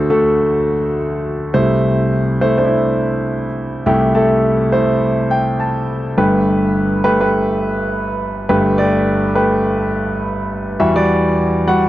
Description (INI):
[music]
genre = pop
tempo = 104 BPM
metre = 4/4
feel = swing 56% on 16ths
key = unclear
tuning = A4 = 440 Hz
[part]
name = clear concert grand piano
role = solo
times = 0.0-11.9 s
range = G1 to A5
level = -14 LUFS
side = equal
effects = none
[sound]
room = light reverb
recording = dry, close 1970s-style studio recording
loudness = -14 LUFS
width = side -14 dB against mid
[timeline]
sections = 0.0-10.8 A section; 10.8-11.9 B section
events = grand piano fill 5.0-6.2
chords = 0.0 D; 1.5 C6; 6.2 Gadd9; 10.8 Emadd9